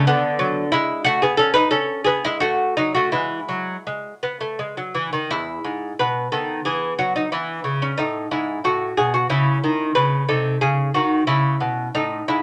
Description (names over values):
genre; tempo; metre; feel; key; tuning
classical, baroque-style dance for lute; 55-62 BPM (dotted quarters); 6/8; rubato; E major; A4 = 440 Hz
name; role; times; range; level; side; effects
lute; solo; 0.0-12.4 s; E2 to B4; -21 LUFS; equal; none
room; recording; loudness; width
moderate studio reverb, RT60 0.6 s; none; -21 LUFS; mono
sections
0.0-5.3 A section; 5.3-12.4 B section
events
none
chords
0.0 E7; 1.1 Amaj9#11; 2.1 B5; 3.1 E; 6.3 B/D#; 7.3 E; 9.3 C#m; 10.3 Cdim7; 11.3 C#m